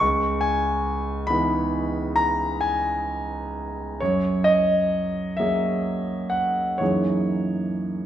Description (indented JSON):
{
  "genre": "classical, impressionist solo piano",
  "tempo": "37-48 BPM (dotted quarters)",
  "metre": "9/8",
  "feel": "rubato",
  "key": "unclear",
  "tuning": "A4 = 440 Hz",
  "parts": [
    { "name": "warm concert grand piano", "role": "solo", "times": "0.0-8.1 s", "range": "C#2 to C#6", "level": "-21 LUFS", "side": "equal", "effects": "none" }
  ],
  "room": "moderate scoring stage reverb, RT60 1.6 s",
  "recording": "minimal, uncompressed stereo recording",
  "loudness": "-21 LUFS",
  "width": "side -11 dB against mid",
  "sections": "0.0-8.1 A section",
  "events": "none",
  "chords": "0.0 C#m9; 4.0 F#9"
}